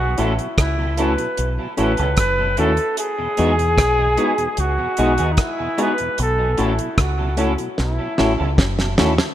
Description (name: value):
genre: lovers rock reggae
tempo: 75 BPM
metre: 4/4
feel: straight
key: unclear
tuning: A4 = 442 Hz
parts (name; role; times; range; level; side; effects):
- breathy flugelhorn; melody; 0.0-8.6 s; D#4 to B4; -22 LUFS; equal; tape echo
- mellow tonewheel organ; accompaniment; 0.0-9.1 s; E2 to E4; -32 LUFS; right 3 dB; none
- deep dub fingered electric bass; bass; 0.0-9.2 s; F#1 to E2; -21 LUFS; equal; none
- tine electric piano; accompaniment; 0.2-9.1 s; G#3 to F#4; -24 LUFS; left 3 dB; overdrive
- electric guitar through a small old amp; stabs; 0.2-9.1 s; B3 to A4; -27 LUFS; right 3 dB; ensemble chorus, tape echo
- damped 70s drum kit; drums; 0.2-9.3 s; hi-hat, kick drum, rim click, snare drum; -21 LUFS; equal; none
room: light reverb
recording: rough home demo mix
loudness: -16 LUFS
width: side -12 dB against mid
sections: 0.0-9.3 A section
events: drum fill 7.8-9.3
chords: 0.0 B9sus4; 3.0 Emaj7; 6.2 B9sus4